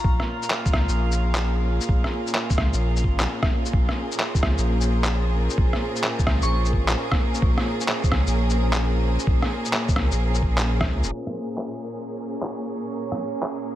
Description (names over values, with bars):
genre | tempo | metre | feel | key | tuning
future garage | 130 BPM | 4/4 | swing 67% on 16ths | Bb minor | A4 = 439 Hz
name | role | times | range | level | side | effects
soft synth bell | melody | 0.0-0.5, 6.4-6.7 s | Bb5 to Db6 | -36 LUFS | left 2 dB | chorus, phaser, dub echo
warm sub bass | bass | 0.0-11.1 s | F1 to Db2 | -22 LUFS | equal | sidechain pumping
electronic kick drum | drums | 0.0-10.9 s | none | -23 LUFS | equal | none
drifting glass-harmonics texture | texture | 0.0-13.8 s | Db4 to F5 | -32 LUFS | right 3 dB | chorus, built-in reverb
rich symphonic string section | sustained chords | 0.1-13.8 s | Bb2 to Bb4 | -29 LUFS | equal | sidechain pumping, low-pass filter
electronic rim click, shaker and handclaps | drums | 0.2-13.5 s | none | -27 LUFS | equal | low-pass filter on perc, low-pass filter on hats, low-pass filter on snare
room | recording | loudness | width
light reverb, digital ambience | vinyl crackle, low-pass filter | -20 LUFS | side -13 dB against mid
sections
0.0-11.1 A section; 11.1-13.8 B section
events
filter sweep on string section 11.1-13.8; filter sweep 11.1-13.8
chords
0.0 Bbm7